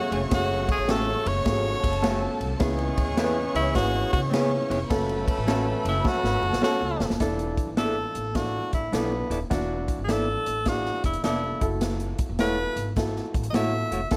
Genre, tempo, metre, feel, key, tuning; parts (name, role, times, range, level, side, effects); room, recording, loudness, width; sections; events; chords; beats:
uptempo 1960s-style soul; 104 BPM; 4/4; swing 65% on 8ths; F# minor; A4 = 436 Hz
edgy tenor saxophone; melody; 0.0-14.1 s; B3 to E5; -30 LUFS; equal
warm horn section; second line; 0.0-7.0 s; C#3 to A4; -37 LUFS; equal
warm studio violin section; second line; 0.0-7.2 s; A4 to C#6; -36 LUFS; equal
warm grand piano; accompaniment; 0.0-14.2 s; C#3 to B4; -33 LUFS; equal
semi-hollow electric guitar; stabs; 0.1-14.0 s; A3 to D5; -32 LUFS; equal
upright bass; bass; 0.1-14.2 s; D#1 to C#3; -33 LUFS; equal
swinging big-band drum kit; drums; 0.1-14.2 s; hi-hat, kick drum, ride cymbal, snare drum; -31 LUFS; equal
congas; percussion; 0.9-14.2 s; -40 LUFS; equal
light reverb; -25 LUFS; mono
0.0-7.2 A section; 7.2-14.2 B section
drum fill 6.1-7.2
0.0 F#madd9; 2.6 C#m7; 4.9 F#m; 7.2 E7sus4; 11.5 F#m7
| 0.32 0.89 1.46 2.04 | 2.61 3.18 3.76 4.33 | 4.90 5.48 6.05 6.63 | 7.21 7.78 8.36 8.93 | 9.51 10.09 10.66 11.24 | 11.81 12.39 12.97 13.54 | 14.12